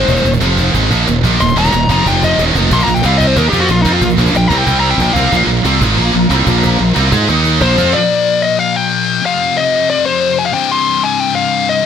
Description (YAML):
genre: heavy metal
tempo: 184 BPM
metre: 4/4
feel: straight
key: unclear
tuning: A4 = 445 Hz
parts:
  - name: high-gain lead guitar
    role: melody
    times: 0.0-5.3, 7.6-11.9 s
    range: Eb4 to C6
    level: -15 LUFS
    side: left 3 dB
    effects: distortion, digital delay
  - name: heavy high-gain guitar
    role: riff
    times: 0.0-7.9 s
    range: Eb2 to Ab4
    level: -16 LUFS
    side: right 16 dB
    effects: distortion
  - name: heavy high-gain guitar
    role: riff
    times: 0.0-7.9 s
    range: Eb2 to Ab4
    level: -20 LUFS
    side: right 1 dB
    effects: distortion
  - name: scooped high-gain guitar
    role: riff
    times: 0.0-11.9 s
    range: C2 to Ab4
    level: -17 LUFS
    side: left 13 dB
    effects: distortion
  - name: fuzz fingered electric bass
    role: bass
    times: 0.0-7.9 s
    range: Eb1 to Ab2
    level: -15 LUFS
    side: right 1 dB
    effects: overdrive
  - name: muted studio string section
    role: sustained chords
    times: 0.1-7.9 s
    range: Eb3 to Bb5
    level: -25 LUFS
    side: right 2 dB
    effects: none
  - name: cajon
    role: drums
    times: 0.1-7.9 s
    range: none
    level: -22 LUFS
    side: right 1 dB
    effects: none
room: digital ambience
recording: none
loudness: -10 LUFS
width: side -8 dB against mid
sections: 0.0-5.3 A section; 5.3-7.9 B section; 7.9-11.9 C section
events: lead electric guitar solo 0.0-5.3; drum fill 4.7-5.3, 7.3-7.9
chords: 0.1 Eb5; 0.4 F5; 0.7 Eb5; 2.1 F5; 2.4 Eb5; 2.7 Bb5; 3.0 C5; 3.4 Bb5; 4.7 C5; 5.0 Bb5; 7.3 Eb5; 7.6 Bb5; 7.9 Bb; 9.2 F5; 10.5 C5